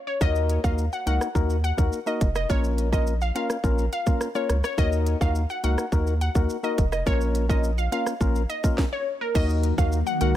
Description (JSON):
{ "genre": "dancehall", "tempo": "105 BPM", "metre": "4/4", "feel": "straight", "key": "Eb minor", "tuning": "A4 = 441 Hz", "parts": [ { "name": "glassy wavetable pluck", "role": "melody", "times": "0.1-10.3 s", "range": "Bb4 to Gb5", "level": "-29 LUFS", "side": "left 1 dB", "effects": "chorus, ping-pong delay" }, { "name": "percussive organ stab", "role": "accompaniment", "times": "0.2-10.4 s", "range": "Bb3 to Bb4", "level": "-29 LUFS", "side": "left 3 dB", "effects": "chorus" }, { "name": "round analog bass", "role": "bass", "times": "0.2-10.3 s", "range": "F1 to Eb2", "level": "-24 LUFS", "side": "equal", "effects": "none" }, { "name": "island pop drum kit", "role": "drums", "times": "0.2-10.3 s", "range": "crash cymbal, hi-hat, kick drum, rim click, shaker, snare drum", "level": "-25 LUFS", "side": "equal", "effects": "none" }, { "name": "glassy FM pad", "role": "sustained chords", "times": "9.6-10.4 s", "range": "Eb3 to Gb4", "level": "-29 LUFS", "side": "equal", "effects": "ensemble chorus, built-in reverb, sidechain pumping" } ], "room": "digital ambience", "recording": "none", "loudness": "-22 LUFS", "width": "side -12 dB against mid", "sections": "0.0-9.4 A section; 9.4-10.4 B section", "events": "break 0.0; stop 8.8-9.4", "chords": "0.2 Ebm; 2.5 Bbm; 4.8 Ebm; 7.1 Bbm; 9.4 Ebm", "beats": "| 0.21 0.78 1.35 1.92 | 2.50 3.07 3.64 4.21 | 4.78 5.35 5.92 6.50 | 7.07 7.64 8.21 8.78 | 9.35 9.92" }